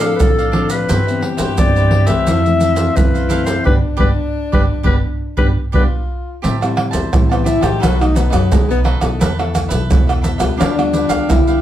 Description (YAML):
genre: samba and choro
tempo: 87 BPM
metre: 4/4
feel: straight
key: A minor from 6.4 s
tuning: A4 = 442 Hz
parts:
  - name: growling clarinet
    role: melody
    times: 0.0-5.8 s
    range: A4 to F5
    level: -20 LUFS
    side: left 3 dB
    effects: none
  - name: breathy tenor saxophone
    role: second line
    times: 0.0-11.6 s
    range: F#3 to A4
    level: -20 LUFS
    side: left 3 dB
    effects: none
  - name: cavaquinho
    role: accompaniment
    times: 0.0-11.6 s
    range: D4 to A5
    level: -26 LUFS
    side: right 4 dB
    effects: none
  - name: nylon-string guitar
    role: accompaniment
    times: 0.0-11.6 s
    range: F2 to A4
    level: -22 LUFS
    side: left 4 dB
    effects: none
  - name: upright bass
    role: bass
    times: 0.0-11.6 s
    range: G1 to A2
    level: -19 LUFS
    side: equal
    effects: none
  - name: maracas, pandeiro, surdo and tamborim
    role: percussion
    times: 0.0-11.6 s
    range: none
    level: -16 LUFS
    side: right 1 dB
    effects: none
room: moderate studio reverb, RT60 0.7 s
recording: heard from further back in the room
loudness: -13 LUFS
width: side -12 dB against mid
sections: 0.0-6.4 A section; 6.4-11.6 B section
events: band accent 3.7-6.4; drum fill 5.9-6.4; tenor saxophone solo 6.4-11.6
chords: 0.0 F6/A; 0.9 Cmaj7/G; 2.3 Fmaj7; 3.7 G7; 6.4 Am7; 7.8 B7; 9.2 Esus4; 10.6 G7/D